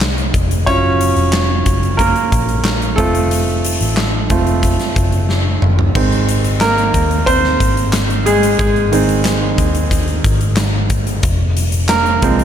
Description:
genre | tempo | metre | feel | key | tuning
piano-driven pop | 91 BPM | 4/4 | straight | unclear | A4 = 435 Hz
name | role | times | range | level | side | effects
bright grand piano | accompaniment | 0.0-12.4 s | Eb3 to Db5 | -16 LUFS | right 3 dB | none
vintage muted fingered electric bass | bass | 0.0-12.4 s | F1 to Eb2 | -17 LUFS | left 1 dB | none
huge arena drum kit | drums | 0.0-12.4 s | crash cymbal, handclaps, hi-hat, kick drum, snare drum, toms | -17 LUFS | left 1 dB | none
room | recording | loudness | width
light reverb, small room ambience | none | -12 LUFS | side -9 dB against mid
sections
0.0-6.0 A section; 6.0-12.4 B section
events
grand piano solo 0.0-6.0, 6.0-12.4; drum fill 5.3-6.0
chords
0.0 Abadd9; 0.7 Gbmaj7/F; 3.0 F; 6.0 Ab; 11.2 Fm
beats
0.01 | 0.67 1.33 1.99 2.65 | 3.31 3.97 4.63 5.29 | 5.95 6.61 7.27 7.93 | 8.60 9.26 9.92 10.58 | 11.24 11.90

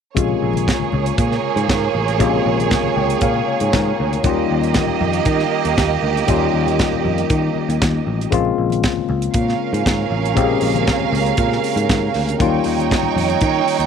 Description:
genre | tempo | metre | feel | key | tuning
disco | 118 BPM | 4/4 | straight | Bb dorian | A4 = 440 Hz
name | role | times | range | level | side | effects
barky tine electric piano | accompaniment | 0.1-13.9 s | C3 to G5 | -21 LUFS | left 11 dB | low-pass filter
warm symphonic violin section | second line | 0.2-13.9 s | Bb3 to G5 | -20 LUFS | right 12 dB | none
picked electric bass | bass | 0.2-13.9 s | A1 to Eb3 | -21 LUFS | equal | none
tight funk drum kit | drums | 0.2-13.9 s | hi-hat, kick drum, snare drum | -21 LUFS | equal | none
congas | percussion | 0.2-13.7 s | none | -31 LUFS | left 8 dB | none
room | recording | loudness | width
light reverb, small room ambience | 1960s-style stereo with parts hard left and right | -15 LUFS | side -7 dB against mid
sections
0.2-13.9 A section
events
filter sweep on tine electric piano 0.2-13.9; tine electric piano fill 2.7-4.2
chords
0.2 Bbm7; 4.2 Eb7; 8.3 Bbm7; 12.4 Eb7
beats
| 0.17 0.67 1.18 1.69 | 2.20 2.71 3.22 3.73 | 4.24 4.75 5.26 5.77 | 6.28 6.79 7.30 7.81 | 8.32 8.83 9.34 9.85 | 10.36 10.87 11.38 11.89 | 12.40 12.91 13.42

